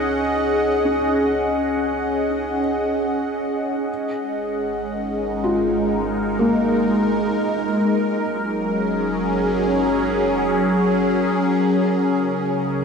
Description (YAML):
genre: ambient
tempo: free time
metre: none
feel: none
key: unclear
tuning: A4 = 440 Hz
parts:
  - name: evolving wavetable pad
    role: sustained chords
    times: 0.0-12.8 s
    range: C#3 to F#5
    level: -19 LUFS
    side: equal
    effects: phaser, built-in reverb
  - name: felt-muted upright piano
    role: arpeggios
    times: 0.0-8.2 s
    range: A#3 to E#4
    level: -26 LUFS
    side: left 1 dB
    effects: tape echo
  - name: deep rumbling drone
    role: bass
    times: 0.0-12.8 s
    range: F#1 to C#2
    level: -39 LUFS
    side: right 1 dB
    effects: built-in reverb
room: wet huge ambient reverb, RT60 7.8 s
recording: faint mains hum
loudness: -18 LUFS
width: side -5 dB against mid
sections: 0.0-12.8 A section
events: fade-in on synth drone 0.0-12.8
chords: 0.0 C#sus4; 3.9 G#sus2; 7.8 F#; 11.6 C#5